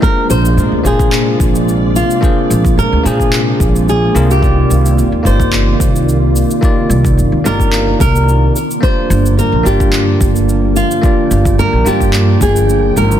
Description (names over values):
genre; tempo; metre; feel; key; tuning
sunset chillout; 109 BPM; 4/4; straight; unclear; A4 = 435 Hz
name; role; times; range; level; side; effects
nylon-string guitar; melody; 0.0-13.2 s; F4 to C5; -16 LUFS; equal; ping-pong delay
bell-like tine electric piano; accompaniment; 0.0-13.2 s; Bb3 to G5; -18 LUFS; moving between left 2 dB and right 4 dB; auto-pan, tape echo
soft string machine; sustained chords; 0.0-13.2 s; C3 to G5; -19 LUFS; equal; ensemble chorus, vintage 12-bit sampler grit
electronic kick drum; drums; 0.0-12.5 s; none; -14 LUFS; equal; studio ambience
electronic shaker and handclaps; drums; 0.0-13.2 s; none; -22 LUFS; equal; studio ambience
upright bass; bass; 0.3-13.2 s; G1 to Bb2; -13 LUFS; equal; none
room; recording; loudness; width
light reverb, digital ambience; dense, heavily limited modern master; -9 LUFS; side -10 dB against mid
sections
0.0-13.2 A section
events
none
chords
0.0 Bb9; 4.4 Cm11; 8.6 Gm7